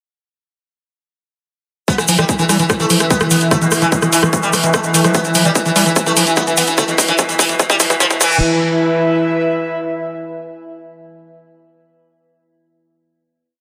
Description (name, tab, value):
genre	psychedelic trance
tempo	147 BPM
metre	4/4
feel	straight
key	unclear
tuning	A4 = 440 Hz
part	sitar	melody	1.9-8.4 s	B2 to B3	-20 LUFS	equal	phaser, sidechain pumping, tape echo
part	evolving wavetable pad	sustained chords	2.6-8.2 s	E3 to E4	-25 LUFS	equal	chorus, built-in reverb, phaser, sidechain pumping
part	overdriven acid bass	riff	1.9-8.4 s	D3 to G3	-22 LUFS	equal	distortion, sidechain pumping, tape echo
part	drum and bass drum kit	drums	1.9-8.3 s	crash cymbal, hi-hat, rim click	-21 LUFS	equal	overdrive, studio ambience
part	electronic kick drum	drums	1.9-8.3 s	none	-19 LUFS	equal	overdrive, high-pass filter on kick, studio ambience
part	tube shaker	percussion	1.9-8.4 s	none	-22 LUFS	equal	none
part	airy breathy pad	texture	1.9-10.0 s	E4 to E5	-23 LUFS	equal	chorus, sidechain pumping
part	round analog bass	bass	2.0-8.4 s	D1 to B1	-33 LUFS	equal	none
room	moderate plate reverb, RT60 1.8 s, digital ambience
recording	dense, heavily limited modern master, high-pass filter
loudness	-14 LUFS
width	mono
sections	1.9-8.4 build; 8.4-10.0 final note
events	build-up 1.9-8.4; filter sweep on acid bass 1.9-8.4; filter sweep on ambient pad 1.9-8.4; drum fill 5.1-8.4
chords	1.9 E5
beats	| 1.88 2.29 2.70 3.10 | 3.51 3.92 4.33 4.74 | 5.15 5.55 5.96 6.37 | 6.78 7.19 7.59 8.00 | 8.41 8.82 9.23 9.64